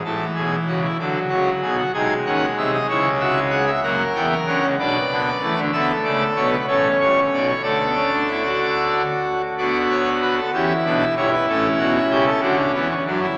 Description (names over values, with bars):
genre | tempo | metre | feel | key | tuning
classical, baroque-style 4-part fugue for pipe organ | 63 BPM (dotted quarters) | 6/8 | straight | D major from 5.7 s | A4 = 440 Hz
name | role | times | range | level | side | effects
pipe organ, full organ | solo | 0.0-13.4 s | G1 to G#5 | -20 LUFS | equal | none
room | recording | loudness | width
wet cathedral reverb, RT60 5.9 s | recorded in a church or concert hall, small speaker sound | -20 LUFS | mono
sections
0.0-9.6 A section; 9.6-13.4 B section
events
none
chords
0.0 A; 1.0 D; 1.9 G#7/B#; 2.9 C#m; 3.8 F#7; 4.8 Bm; 5.7 D5; 6.7 A7; 7.6 D; 10.5 Em; 11.5 A; 12.4 D